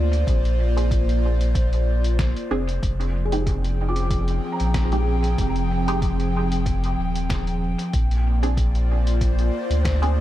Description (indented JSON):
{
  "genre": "ambient dub",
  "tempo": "94 BPM",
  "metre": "4/4",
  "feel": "swing 55% on 16ths",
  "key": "F dorian",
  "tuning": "A4 = 440 Hz",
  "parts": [
    { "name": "airy breathy pad", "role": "sustained chords", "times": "0.0-10.2 s", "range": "F3 to G5", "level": "-26 LUFS", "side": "equal", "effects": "chorus" },
    { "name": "warm sub bass", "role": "bass", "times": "0.0-10.2 s", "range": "Eb1 to D2", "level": "-21 LUFS", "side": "equal", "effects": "none" },
    { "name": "lo-fi sampler-style drum kit", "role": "drums", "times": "0.1-10.1 s", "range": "hi-hat, snare drum", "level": "-33 LUFS", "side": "equal", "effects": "overdrive, dub echo" },
    { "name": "electronic kick drum", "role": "drums", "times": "0.3-10.0 s", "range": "none", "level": "-25 LUFS", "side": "equal", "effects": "none" },
    { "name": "filtered dub chord stab", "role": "stabs", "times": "0.8-10.2 s", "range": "Ab3 to Ab4", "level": "-31 LUFS", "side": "right 2 dB", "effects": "phaser, lush chorus, dub echo" },
    { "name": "felt-muted upright piano", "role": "arpeggios", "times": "3.3-8.0 s", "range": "F4 to D6", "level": "-34 LUFS", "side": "equal", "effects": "tape echo" }
  ],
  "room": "light reverb, digital ambience",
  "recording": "none",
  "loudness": "-19 LUFS",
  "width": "side -14 dB against mid",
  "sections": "0.0-10.2 A section",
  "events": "none",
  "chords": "0.0 Bbadd9; 2.8 Fm9; 7.9 Bb9"
}